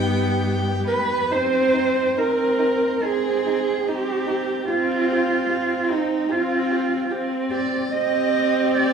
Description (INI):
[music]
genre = classical, slow romantic movement for string quartet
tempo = 66-76 BPM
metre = 4/4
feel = rubato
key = C minor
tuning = A4 = 440 Hz
[part]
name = warm violin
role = melody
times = 0.0-8.9 s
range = Eb4 to G5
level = -30 LUFS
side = left 6 dB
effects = none
[part]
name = dark violin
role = second line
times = 0.0-8.9 s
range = Eb4 to G4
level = -31 LUFS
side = left 2 dB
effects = none
[part]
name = rich viola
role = accompaniment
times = 0.0-8.9 s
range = B3 to C4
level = -24 LUFS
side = equal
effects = none
[part]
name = dark cello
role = bass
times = 0.0-8.9 s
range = G2 to Eb5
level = -22 LUFS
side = right 5 dB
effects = none
[sound]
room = moderate cathedral reverb, RT60 6.0 s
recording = in a vast, echoing space, studio ambience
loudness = -19 LUFS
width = side -6 dB against mid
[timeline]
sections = 0.0-1.3 A section; 1.3-8.9 B section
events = none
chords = 0.0 G; 1.3 C5; 4.7 N.C.; 7.9 Cm